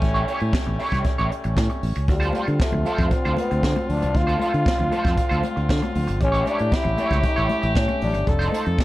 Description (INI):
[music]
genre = disco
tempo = 116 BPM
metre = 4/4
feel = straight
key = D minor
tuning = A4 = 440 Hz
[part]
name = growling trombone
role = melody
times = 0.0-8.5 s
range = G3 to F4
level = -26 LUFS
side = left 1 dB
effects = none
[part]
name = electric guitar at the edge of break-up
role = accompaniment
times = 0.0-8.8 s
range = Eb4 to C#5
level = -28 LUFS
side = right 2 dB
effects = wah
[part]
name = muted French horn section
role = sustained chords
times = 0.0-8.8 s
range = D3 to A4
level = -29 LUFS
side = equal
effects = none
[part]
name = fingered electric bass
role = bass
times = 0.0-8.8 s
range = F1 to D3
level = -23 LUFS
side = equal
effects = none
[part]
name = jazz brush drum kit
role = drums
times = 0.0-8.8 s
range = hi-hat, kick drum, snare drum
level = -24 LUFS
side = equal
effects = none
[part]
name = congas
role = percussion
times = 2.3-8.8 s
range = none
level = -32 LUFS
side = left 4 dB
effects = none
[sound]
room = small room ambience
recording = none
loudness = -19 LUFS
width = side -16 dB against mid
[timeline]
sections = 0.0-8.8 A section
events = none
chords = 0.0 A7; 2.1 Dm7; 6.2 A7; 8.3 F7